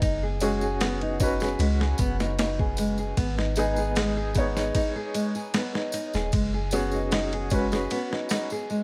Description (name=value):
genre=trip hop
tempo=76 BPM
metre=4/4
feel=straight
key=unclear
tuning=A4 = 440 Hz
part: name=nylon-string guitar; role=arpeggios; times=0.0-8.8 s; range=G#3 to G#4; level=-32 LUFS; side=equal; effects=tape echo
part: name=soft 808-style bass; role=bass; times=0.0-7.9 s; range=D#1 to C#2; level=-31 LUFS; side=equal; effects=tube saturation
part: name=dusty soul sampler-style drum kit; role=drums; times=0.0-8.5 s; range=kick drum, ride cymbal, snare drum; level=-32 LUFS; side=equal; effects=none
part: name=tambourine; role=percussion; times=0.0-8.8 s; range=none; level=-43 LUFS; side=equal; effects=none
part: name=felt-muted upright piano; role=accompaniment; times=0.4-8.5 s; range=G#3 to C#5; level=-32 LUFS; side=equal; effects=tremolo, low-pass filter, tape echo
room=little or no reverb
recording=vinyl crackle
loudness=-26 LUFS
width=mono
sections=0.0-8.8 A section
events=break 7.9-8.8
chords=0.0 F#sus2; 3.2 G#m; 6.3 F#sus2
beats=| 0.01 0.80 1.59 2.38 | 3.17 3.96 4.75 5.54 | 6.33 7.12 7.91 8.70